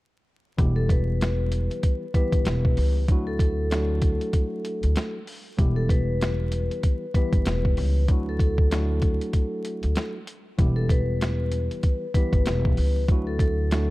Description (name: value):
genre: hip hop, boom-bap hip-hop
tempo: 96 BPM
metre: 4/4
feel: swing 59% on 16ths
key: E minor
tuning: A4 = 440 Hz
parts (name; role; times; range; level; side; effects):
- mellow tine electric piano; accompaniment; 0.6-13.9 s; E3 to G4; -31 LUFS; equal; medium stereo tremolo, high-pass filter, low-pass filter
- upright bass; bass; 0.6-13.9 s; E1 to D2; -24 LUFS; equal; none
- boom bap sampler-style drum kit; drums; 0.6-13.9 s; hi-hat, kick drum, snare drum; -23 LUFS; equal; vintage 12-bit sampler grit
- vibraphone with medium hard mallets; melody; 0.8-13.9 s; A4 to B4; -31 LUFS; left 1 dB; high-pass filter, low-pass filter
room: little or no reverb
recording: dark, warm production, vinyl crackle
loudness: -21 LUFS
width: side -19 dB against mid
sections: 0.6-13.9 A section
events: none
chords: 0.6 Em; 3.1 Dadd9; 5.6 Em; 8.1 Dadd9; 10.6 Em; 13.1 Dadd9